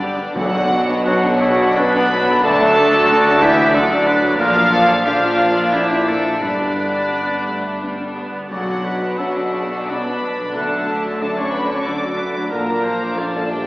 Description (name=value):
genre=cinematic, emotional film score for orchestra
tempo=82-93 BPM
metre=3/4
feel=rubato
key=B minor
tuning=A4 = 439 Hz
part: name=rich studio violin section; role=melody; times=0.0-13.7 s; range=D4 to G4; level=-26 LUFS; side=left 1 dB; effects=none
part: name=clear studio violin section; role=second line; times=0.0-13.7 s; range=D5 to D6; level=-21 LUFS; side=equal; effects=none
part: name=warm clarinet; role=second line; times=0.0-13.7 s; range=D4 to D5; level=-23 LUFS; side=equal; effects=none
part: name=clear studio viola section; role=accompaniment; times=0.0-13.7 s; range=C#3 to D4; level=-26 LUFS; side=equal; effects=none
part: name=dark grand piano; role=accompaniment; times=0.0-13.7 s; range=B1 to D5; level=-27 LUFS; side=left 1 dB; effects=none
part: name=dark French horn section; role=sustained chords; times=0.0-13.7 s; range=D3 to E4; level=-23 LUFS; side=equal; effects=none
part: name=concert harp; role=arpeggios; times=0.0-13.7 s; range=G2 to D6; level=-29 LUFS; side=left 1 dB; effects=none
part: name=dark studio cello section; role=bass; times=0.0-13.7 s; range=G2 to D3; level=-25 LUFS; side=right 1 dB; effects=none
part: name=rich studio double bass section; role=bass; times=0.0-13.7 s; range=G1 to D2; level=-29 LUFS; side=right 1 dB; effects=none
part: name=timpani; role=percussion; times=0.4-1.4 s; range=B2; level=-29 LUFS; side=equal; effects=none
part: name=warm oboe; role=second line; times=1.1-13.7 s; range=D4 to F#5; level=-23 LUFS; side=equal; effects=none
room=wet recital hall reverb, RT60 1.4 s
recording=recorded in a church or concert hall, AM radio sound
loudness=-14 LUFS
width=side -19 dB against mid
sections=0.4-13.7 A section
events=none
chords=0.4 Bmadd9; 2.4 D; 4.4 A#; 6.4 G; 8.5 Bmadd9; 10.6 D; 12.5 A#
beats=| 0.36 1.06 1.77 | 2.45 3.10 3.74 | 4.39 5.05 5.72 | 6.41 7.11 7.81 | 8.51 9.19 9.89 | 10.56 11.22 11.87 | 12.52 13.18